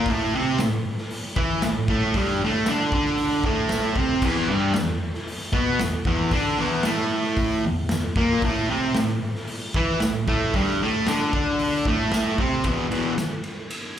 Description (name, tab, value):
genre	garage rock duo or trio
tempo	114 BPM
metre	4/4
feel	straight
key	unclear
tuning	A4 = 440 Hz
part	fuzz guitar	riff	0.0-13.1 s	E2 to E4	-21 LUFS	equal	distortion, slapback echo
part	raw garage drum kit	drums	0.1-13.8 s	crash cymbal, hi-hat, kick drum, ride cymbal, snare drum	-27 LUFS	equal	none
part	tambourine	percussion	0.6-13.3 s	none	-38 LUFS	left 1 dB	none
room	small room ambience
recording	live gig heard through the venue's PA, club reverb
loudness	-21 LUFS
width	side -10 dB against mid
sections	0.0-12.7 A section; 12.7-14.0 B section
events	none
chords	0.1 A5; 4.2 E5; 8.4 A5; 12.7 E5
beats	| 0.06 0.58 1.10 1.62 | 2.15 2.67 3.19 3.71 | 4.23 4.75 5.28 5.80 | 6.32 6.85 7.38 7.90 | 8.43 8.96 9.48 10.01 | 10.54 11.07 11.60 12.13 | 12.66 13.19 13.72